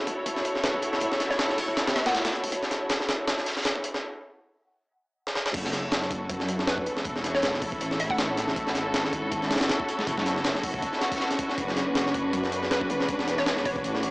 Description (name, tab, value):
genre	drum and bass, jungle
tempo	159 BPM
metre	4/4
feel	swing 55% on 16ths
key	F# minor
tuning	A4 = 440 Hz
part	rich studio string section	sustained chords	0.0-14.1 s	C#4 to C#5	-29 LUFS	equal	none
part	crunchy breakbeat drum kit	drums	0.1-14.1 s	hi-hat, snare drum	-37 LUFS	equal	none
part	jungle sampler-style drum kit	drums	0.1-14.1 s	crash cymbal, hi-hat, kick drum, snare drum	-28 LUFS	equal	overdrive, high-pass filter on kick, high-pass filter on hats, high-pass filter on snare, high-pass filter on cymbals, high-pass filter on room
part	hollow square pluck	melody	0.6-2.4, 6.7-8.5, 12.7-13.9 s	B4 to F#5	-32 LUFS	equal	wide subtle chorus, dub echo
part	dark detuned saw bass	bass	5.5-14.1 s	E1 to F#2	-34 LUFS	equal	none
room	moderate digital room reverb, RT60 0.9 s, small room ambience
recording	dry, gritty hardware recording, high-pass filter, small speaker sound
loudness	-24 LUFS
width	side -32 dB against mid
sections	0.0-5.5 A section; 5.5-14.1 B section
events	build-up 0.0-5.5; filter sweep 0.0-5.5; break 4.0-5.5; drum fill 5.3; drop 5.5-14.1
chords	0.0 F#m7; 11.6 Bmadd9